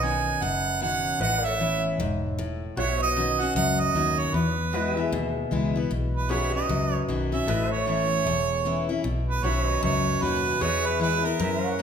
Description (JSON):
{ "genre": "honky-tonk and classic country", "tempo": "153 BPM", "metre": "4/4", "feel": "swing 61% on 8ths", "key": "B mixolydian", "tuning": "A4 = 440 Hz", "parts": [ { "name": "clear harmonica", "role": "second line", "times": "0.0-11.8 s", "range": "A#4 to G#5", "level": "-26 LUFS", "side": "right 6 dB", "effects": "none" }, { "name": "picked steel-string acoustic guitar", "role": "accompaniment", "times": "0.0-11.8 s", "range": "E2 to F#4", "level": "-28 LUFS", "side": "left 4 dB", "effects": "none" }, { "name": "pedal steel guitar", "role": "sustained chords", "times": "0.0-11.8 s", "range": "F#4 to F#5", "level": "-31 LUFS", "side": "equal", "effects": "none" }, { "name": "vintage muted fingered electric bass", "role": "bass", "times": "0.0-11.8 s", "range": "E1 to F#2", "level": "-30 LUFS", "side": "equal", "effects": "none" } ], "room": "wet recital hall reverb, RT60 1.6 s", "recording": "minimal, uncompressed stereo recording", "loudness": "-23 LUFS", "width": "side -7 dB against mid", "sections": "0.0-11.8 A section", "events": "harmonica solo 0.0-11.8", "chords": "0.0 Badd9; 1.2 Aadd9; 2.8 Badd9; 4.3 E; 5.9 Badd9; 7.5 Aadd9; 9.0 Badd9; 10.6 E" }